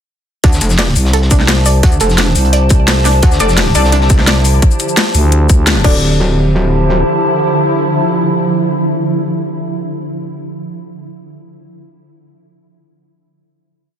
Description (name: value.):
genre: dark technical drum and bass.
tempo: 172 BPM.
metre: 4/4.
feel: straight.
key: D minor.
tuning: A4 = 441 Hz.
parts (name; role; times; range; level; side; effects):
wide unison pluck; arpeggios; 0.4-6.2 s; D4 to D5; -21 LUFS; right 3 dB; sidechain pumping, ping-pong delay.
metallic wobble bass; bass; 0.4-3.7, 5.8-7.0 s; D1 to D2; -13 LUFS; equal; chorus, overdrive.
crunchy breakbeat drum kit; drums; 0.4-4.5 s; hi-hat, snare drum; -24 LUFS; equal; high-pass filter on hats, small room ambience, high-pass filter on snare, high-pass filter on room.
drum and bass drum kit; drums; 0.4-5.9 s; crash cymbal, hi-hat, shaker, snare drum; -15 LUFS; left 2 dB; overdrive, small room ambience.
electronic kick drum; drums; 0.4-5.9 s; none; -10 LUFS; equal; overdrive, small room ambience.
warbly tape-like pad; texture; 1.0-9.6 s; G4 to A5; -19 LUFS; equal; chorus, built-in reverb, sidechain pumping.
growling FM bass; bass; 1.0-5.8 s; C2 to D2; -11 LUFS; equal; none.
swarming drone; sustained chords; 3.9-9.6 s; D3 to E4; -18 LUFS; right 1 dB; built-in reverb, sidechain pumping.
orchestra-hit-like synth stab; stabs; 3.4-10.3 s; D4 to D5; -20 LUFS; left 4 dB; built-in reverb, ping-pong delay.
room: light reverb.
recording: dense, heavily limited modern master.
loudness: -9 LUFS.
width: side -9 dB against mid.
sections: 0.4-6.0 drop; 6.0-8.8 final note.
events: drop 0.4-6.0; band accent 5.7.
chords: 0.4 Dmadd9.